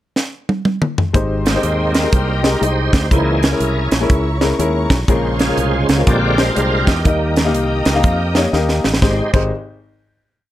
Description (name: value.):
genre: uptempo gospel.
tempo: 122 BPM.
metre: 4/4.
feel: swing 64% on 8ths.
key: Ab major.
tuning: A4 = 440 Hz.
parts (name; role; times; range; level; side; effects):
tight funk drum kit; drums; 0.2-9.4 s; crash cymbal, hi-hat, kick drum, snare drum, toms; -16 LUFS; right 1 dB; none.
clear grand piano; accompaniment; 1.1-9.5 s; Ab1 to F5; -20 LUFS; left 3 dB; none.
warm studio string section; sustained chords; 1.1-9.3 s; G4 to Eb6; -29 LUFS; left 1 dB; none.
fingered electric bass; bass; 1.1-9.5 s; Ab1 to F2; -19 LUFS; equal; none.
bright tonewheel organ; sustained chords; 1.5-9.3 s; Db3 to D5; -20 LUFS; right 2 dB; fast rotary speaker, overdrive, chorus vibrato.
room: light reverb, small room ambience.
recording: none.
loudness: -13 LUFS.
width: side -14 dB against mid.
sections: 0.0-1.1 pickup bar; 1.1-9.0 verse; 9.0-10.5 final chord.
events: drum fill 0.2-1.1, 8.5-9.0; tonewheel organ solo 1.1-9.0.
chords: 0.0 N.C.; 1.1 Abmaj7; 3.1 Dbm6; 5.1 Bbm7; 6.1 Bb13; 7.1 Eb; 9.0 Abmaj7.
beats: 0.16 0.65 | 1.14 1.63 2.12 2.62 | 3.11 3.60 4.09 4.59 | 5.08 5.57 6.07 6.56 | 7.05 7.54 8.04 8.53 | 9.02.